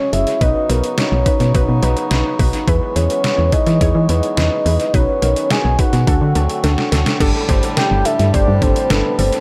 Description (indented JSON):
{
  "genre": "synth-pop",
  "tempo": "106 BPM",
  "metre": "4/4",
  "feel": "straight",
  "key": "B major",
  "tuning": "A4 = 440 Hz",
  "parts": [
    { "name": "soft octave-layered synth lead", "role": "melody", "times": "0.0-9.4 s", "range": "B4 to G#5", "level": "-22 LUFS", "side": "equal", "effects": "chorus, tremolo, tape echo" },
    { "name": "warbly dusty pluck", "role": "accompaniment", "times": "0.0-9.4 s", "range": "C#4 to C#5", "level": "-25 LUFS", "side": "equal", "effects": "chorus, tape echo" },
    { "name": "hand-pumped harmonium", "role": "sustained chords", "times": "0.0-9.4 s", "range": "A2 to G#4", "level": "-28 LUFS", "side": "equal", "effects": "none" },
    { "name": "solid FM bass", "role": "bass", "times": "0.1-9.3 s", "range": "F#1 to E3", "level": "-18 LUFS", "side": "equal", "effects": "none" },
    { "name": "detuned 8-bit digital drum machine", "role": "drums", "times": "0.1-9.4 s", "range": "crash cymbal, hi-hat, kick drum, snare drum", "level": "-21 LUFS", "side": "equal", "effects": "overdrive, tape echo" }
  ],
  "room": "light reverb",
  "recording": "echo-heavy mix",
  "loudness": "-16 LUFS",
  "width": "mono",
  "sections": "0.0-7.2 A section; 7.2-9.4 B section",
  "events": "drum fill 6.6-7.2",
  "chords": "0.4 Badd9; 2.7 Eadd9; 4.9 Badd9; 6.1 D7; 7.2 Gsus2",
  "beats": "| 0.41 0.98 1.54 2.11 | 2.68 3.24 3.81 4.38 | 4.94 5.51 6.07 6.64 | 7.21 7.77 8.34 8.90"
}